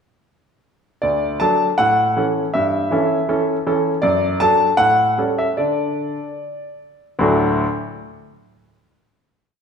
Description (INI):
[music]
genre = classical-period piano sonatina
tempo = 74-81 BPM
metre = 2/4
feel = straight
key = D major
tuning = A4 = 440 Hz
[part]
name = clear grand piano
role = solo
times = 1.0-7.6 s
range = D2 to A5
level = -16 LUFS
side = equal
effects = none
[sound]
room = wet recital hall reverb, RT60 1.4 s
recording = recorded in a church or concert hall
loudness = -16 LUFS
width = side -6 dB against mid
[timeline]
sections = 1.0-7.2 A section; 7.2-8.8 final chord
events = none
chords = 1.0 D; 1.8 A; 2.5 A7/G; 4.0 D/F#; 4.8 A7; 5.6 D5; 7.2 D